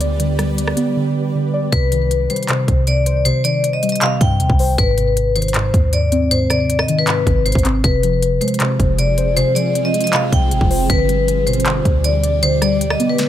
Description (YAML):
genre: hip hop, trap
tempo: 157 BPM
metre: 4/4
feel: half-time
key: C harmonic minor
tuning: A4 = 438 Hz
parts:
  - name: muted felt-like synth keys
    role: accompaniment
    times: 0.0-13.3 s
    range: Ab2 to D5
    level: -19 LUFS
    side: equal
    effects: chorus
  - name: granular cloud pad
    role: sustained chords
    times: 0.0-1.7, 8.7-13.3 s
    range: F3 to D5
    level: -25 LUFS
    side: right 2 dB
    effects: built-in reverb
  - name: clean 808-style bass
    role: bass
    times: 0.0-13.0 s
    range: F1 to G2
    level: -19 LUFS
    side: equal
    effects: none
  - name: trap drum kit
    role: drums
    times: 0.0-13.3 s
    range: handclaps, hi-hat, kick drum, rim click, snare drum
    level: -20 LUFS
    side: equal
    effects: none
  - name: vibraphone with hard mallets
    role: melody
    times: 1.7-13.3 s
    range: B4 to G5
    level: -19 LUFS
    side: left 3 dB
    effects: none
room: light reverb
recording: none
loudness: -14 LUFS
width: side -11 dB against mid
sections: 0.0-1.7 A section; 1.7-13.3 B section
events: none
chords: 0.0 G; 1.7 Cm; 4.8 Ab; 7.8 Fm; 10.9 G